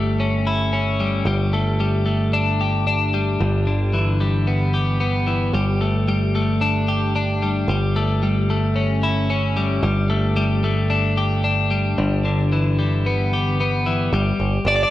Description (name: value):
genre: post-rock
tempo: 112 BPM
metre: 4/4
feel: straight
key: G lydian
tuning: A4 = 440 Hz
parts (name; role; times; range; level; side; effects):
- twelve-string electric guitar; arpeggios; 0.0-14.9 s; G2 to G4; -21 LUFS; left 2 dB; spring reverb, digital delay
- picked electric bass; bass; 0.0-14.8 s; G1; -20 LUFS; right 1 dB; none
- crunchy overdriven guitar; melody; 14.7-14.9 s; D5; -16 LUFS; right 2 dB; none
room: light reverb, digital ambience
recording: none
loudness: -18 LUFS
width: side -14 dB against mid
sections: 0.0-14.1 A section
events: none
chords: 0.0 A/G; 1.3 Gsus2; 3.4 Em7/G; 5.6 Gsus2; 7.7 A/G; 9.8 Gsus2; 12.0 Em7/G; 14.1 G5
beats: 0.19 0.73 | 1.27 1.80 2.34 2.88 | 3.41 3.95 4.48 5.02 | 5.56 6.09 6.63 7.16 | 7.70 8.23 8.77 9.31 | 9.84 10.38 10.91 11.45 | 11.99 12.52 13.06 13.59 | 14.13 14.66